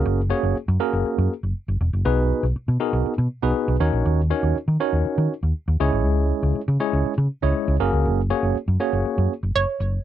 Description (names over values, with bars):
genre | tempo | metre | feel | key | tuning
dance-pop | 120 BPM | 4/4 | straight | unclear | A4 = 440 Hz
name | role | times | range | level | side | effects
tine electric piano | accompaniment | 0.0-9.3 s | G#3 to C#5 | -22 LUFS | right 1 dB | medium stereo tremolo
hollow-body short-scale fingered electric bass | bass | 0.1-10.0 s | E1 to D#3 | -21 LUFS | equal | none
hollow square pluck | melody | 9.6-10.0 s | C#5 | -23 LUFS | right 6 dB | chorus
room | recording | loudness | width
light reverb | dry, close 1970s-style studio recording | -19 LUFS | side -11 dB against mid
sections
0.0-10.0 A section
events
drop 0.0-10.0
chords
0.0 F#add9; 2.1 B6; 3.8 D#m7; 5.8 C#m; 7.8 F#add9